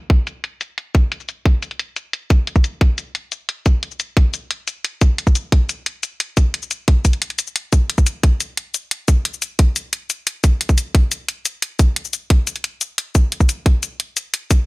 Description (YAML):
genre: drum and bass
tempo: 177 BPM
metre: 4/4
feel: straight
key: none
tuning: none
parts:
  - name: electronic hi-hat and cabasa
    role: drums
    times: 0.1-14.6 s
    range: none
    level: -21 LUFS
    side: left 2 dB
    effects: overdrive, low-pass filter on hats, studio reverb, low-pass filter on perc, low-pass filter on snare, low-pass filter on cymbals
  - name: electronic kick drum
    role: drums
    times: 0.1-14.6 s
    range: none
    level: -13 LUFS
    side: equal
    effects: studio reverb
room: studio ambience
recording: none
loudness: -16 LUFS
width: side -23 dB against mid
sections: 0.0-14.7 A section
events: none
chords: none